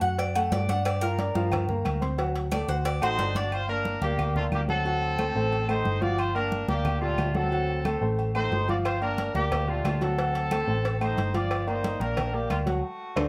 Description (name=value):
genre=latin, salsa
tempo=180 BPM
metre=4/4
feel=straight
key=G minor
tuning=A4 = 438 Hz
part: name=Cuban tres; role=melody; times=0.0-3.5 s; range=D4 to F#5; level=-33 LUFS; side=equal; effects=none
part: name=warm grand piano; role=accompaniment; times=0.0-13.3 s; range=Bb2 to F#6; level=-33 LUFS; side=equal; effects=none
part: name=hollow-body short-scale picked electric bass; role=bass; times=0.0-13.3 s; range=G1 to G2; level=-32 LUFS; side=equal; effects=none
part: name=congas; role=percussion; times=0.0-13.2 s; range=none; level=-37 LUFS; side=equal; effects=none
part: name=agogo bells and timbales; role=percussion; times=0.2-13.2 s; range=none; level=-37 LUFS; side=equal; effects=none
part: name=cowbell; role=percussion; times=0.2-3.5, 8.9-13.2 s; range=none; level=-39 LUFS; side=equal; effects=none
part: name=claves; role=percussion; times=0.4-13.2 s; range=none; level=-45 LUFS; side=equal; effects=none
part: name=clear horn section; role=melody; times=3.0-13.3 s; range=A3 to D5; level=-33 LUFS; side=equal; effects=none
room=moderate studio ambience, RT60 0.5 s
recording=none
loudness=-27 LUFS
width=mono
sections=0.0-3.5 A section; 3.5-13.3 B section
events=Cuban tres solo 0.0-3.5; band accent 12.8-13.3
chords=0.0 D; 0.9 Gm7; 2.2 D7; 3.5 Gm; 4.9 D7; 6.2 Gm7; 7.5 D7; 8.8 Gm7; 10.2 D7; 11.5 Gm7